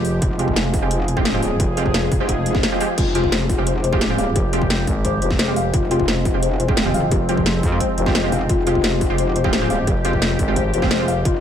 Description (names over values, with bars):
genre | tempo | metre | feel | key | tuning
dark technical drum and bass | 174 BPM | 4/4 | straight | F minor | A4 = 439 Hz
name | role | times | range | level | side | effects
sweeping resonant pad | sustained chords | 0.0-11.4 s | F3 to Ab4 | -25 LUFS | equal | chorus, phaser, sidechain pumping
growling FM bass | bass | 0.0-2.1, 4.4-11.2 s | F1 to F2 | -22 LUFS | equal | none
drum and bass drum kit | drums | 0.0-11.3 s | crash cymbal, hi-hat, snare drum | -23 LUFS | equal | none
metallic wobble bass | bass | 0.2-11.4 s | F1 | -22 LUFS | equal | chorus, tube saturation, sidechain pumping
electronic kick drum | drums | 0.2-11.3 s | none | -23 LUFS | equal | distortion
orchestra-hit-like synth stab | stabs | 0.4-11.1 s | Ab3 to G4 | -25 LUFS | right 3 dB | built-in reverb, tape echo
swell | sound effects | 2.4-3.0 s | none | -30 LUFS | left 1 dB | none
felt-muted upright piano | arpeggios | 3.0-11.3 s | F4 to F5 | -25 LUFS | left 8 dB | sidechain pumping, tape echo
room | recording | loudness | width
light reverb, digital ambience | none | -16 LUFS | side -9 dB against mid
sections
0.0-11.4 A section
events
swell 2.4-3.0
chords
0.0 Fmadd9